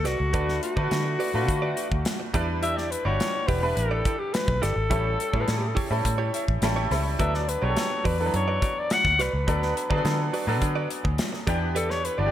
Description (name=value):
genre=polished 1980s jazz-funk pop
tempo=105 BPM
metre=4/4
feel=straight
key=D major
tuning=A4 = 445 Hz
part: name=growling alto saxophone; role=melody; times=0.0-12.3 s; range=F#4 to F#5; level=-28 LUFS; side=left 2 dB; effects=none
part: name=bright baby grand piano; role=accompaniment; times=0.0-12.3 s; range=E3 to B5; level=-30 LUFS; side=equal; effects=wide subtle chorus
part: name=direct-recorded clean electric guitar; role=riff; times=0.0-12.3 s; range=E4 to D5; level=-34 LUFS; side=right 5 dB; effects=wide subtle chorus
part: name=vintage muted fingered electric bass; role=bass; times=0.0-12.3 s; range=E1 to D3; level=-27 LUFS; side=equal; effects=none
part: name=modern studio drum kit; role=drums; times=0.1-12.2 s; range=hi-hat, kick drum, snare drum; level=-29 LUFS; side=equal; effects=gated reverb
room=moderate lush hall reverb, RT60 1.6 s, small room ambience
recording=bright 1980s-style digital production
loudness=-23 LUFS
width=side -11 dB against mid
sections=0.0-12.3 A section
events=grand piano fill 6.1-7.2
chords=0.0 D6; 2.3 Em7; 4.9 A7; 7.2 D6; 11.5 Em7